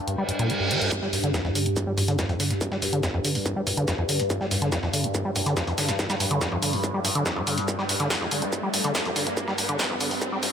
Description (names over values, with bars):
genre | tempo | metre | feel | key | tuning
driving peak-time techno | 142 BPM | 4/4 | straight | unclear | A4 = 439 Hz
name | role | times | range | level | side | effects
overtone-sweeping drone | drone | 0.0-10.5 s | G2 | -29 LUFS | equal | chorus, built-in reverb, phaser, sidechain pumping
acid bass, saw | riff | 0.1-10.5 s | F2 to G3 | -27 LUFS | equal | sidechain pumping, tape echo
punchy analog drum machine | drums | 0.1-10.5 s | hi-hat, snare drum, toms | -28 LUFS | left 1 dB | sidechain pumping on hats, high-pass filter on hats, sidechain pumping on toms, high-pass filter on toms, high-pass filter on snare
reverse cymbal and riser | sound effects | 0.2-10.5 s | none | -32 LUFS | right 1 dB | none
dusty soul sampler-style drum kit | drums | 0.9-10.5 s | hi-hat, shaker, snare drum | -33 LUFS | right 1 dB | overdrive, sidechain pumping on perc, high-pass filter on perc, high-pass filter on snare, sidechain pumping on hats, high-pass filter on hats, high-pass filter on room
electronic kick drum | drums | 0.9-10.3 s | none | -32 LUFS | equal | distortion, high-pass filter on kick, high-pass filter on room
room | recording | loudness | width
moderate lush hall reverb, RT60 2.1 s | high-pass filter | -23 LUFS | side -8 dB against mid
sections
0.9-10.5 A section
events
reverse cymbal 0.2-0.9; build-up 0.9-10.5; riser 0.9-10.5; filter sweep on acid bass 0.9-10.5; filter sweep 0.9-10.5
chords
0.0 Gm; 0.9 G5